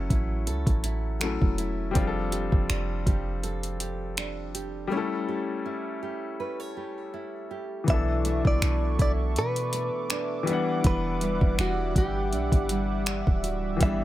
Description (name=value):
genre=contemporary R&B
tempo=81 BPM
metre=4/4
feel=swing 54% on 16ths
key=unclear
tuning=A4 = 440 Hz
part: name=clear grand piano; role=accompaniment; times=0.0-14.0 s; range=E3 to F#5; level=-32 LUFS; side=left 5 dB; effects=none
part: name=nylon-string guitar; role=arpeggios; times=0.0-14.0 s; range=B2 to C#5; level=-35 LUFS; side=right 7 dB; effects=digital delay
part: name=clean 808-style bass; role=bass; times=0.0-14.0 s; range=D1 to B2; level=-29 LUFS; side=equal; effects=none
part: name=smooth R&B drum kit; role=drums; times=0.1-14.0 s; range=finger snaps, hi-hat, kick drum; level=-26 LUFS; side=equal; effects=none
part: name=direct-recorded clean electric guitar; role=melody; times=7.9-14.0 s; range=F#4 to E5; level=-31 LUFS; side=left 1 dB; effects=digital delay
part: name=warm analog pad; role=sustained chords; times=7.9-14.0 s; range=G3 to D6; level=-34 LUFS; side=equal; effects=chorus
room=little or no reverb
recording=none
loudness=-24 LUFS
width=side -14 dB against mid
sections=0.0-7.9 A section; 7.9-14.0 B section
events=break 4.9-7.9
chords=0.0 F#m7; 2.0 F69; 4.9 A7; 7.9 Bm11; 10.5 Em9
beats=0.47 1.21 | 1.95 2.69 3.44 4.18 | 4.92 5.66 6.40 7.14 | 7.88 8.62 9.36 10.10 | 10.84 11.58 12.32 13.06 | 13.80